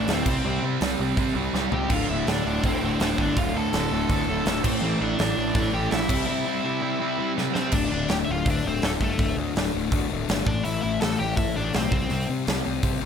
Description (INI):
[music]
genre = punk rock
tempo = 165 BPM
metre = 4/4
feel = straight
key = unclear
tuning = A4 = 440 Hz
[part]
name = biting overdriven guitar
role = melody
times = 0.0-12.3 s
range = A3 to A5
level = -30 LUFS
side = left 2 dB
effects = digital delay
[part]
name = distorted electric guitar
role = riff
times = 0.0-7.7 s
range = D2 to C4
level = -28 LUFS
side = right 14 dB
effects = distortion
[part]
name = sludgy distorted guitar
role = riff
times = 0.0-13.1 s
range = D2 to C4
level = -28 LUFS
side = left 12 dB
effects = overdrive
[part]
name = fuzz picked electric bass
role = bass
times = 0.0-13.1 s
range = D1 to C3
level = -30 LUFS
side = right 1 dB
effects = overdrive
[part]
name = big rock drum kit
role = drums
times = 0.1-12.9 s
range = crash cymbal, hi-hat, kick drum, snare drum, toms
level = -27 LUFS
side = right 1 dB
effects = none
[sound]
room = little or no reverb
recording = none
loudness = -22 LUFS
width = side -7 dB against mid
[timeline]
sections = 0.0-7.7 A section; 7.7-13.1 A section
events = drum fill 1.5-1.9, 7.4-7.7; break 6.3-7.7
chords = 0.3 C5; 1.9 Dm; 4.6 Am; 6.1 C; 7.7 D5; 10.5 Am; 11.9 C5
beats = 0.09 | 0.45 0.81 1.18 1.54 | 1.91 2.27 2.63 3.00 | 3.36 3.73 4.09 4.45 | 4.82 5.18 5.55 5.91 | 6.27 6.64 7.00 7.37 | 7.73 8.10 8.46 8.82 | 9.19 9.55 9.92 10.28 | 10.65 11.01 11.38 11.74 | 12.11 12.47 12.84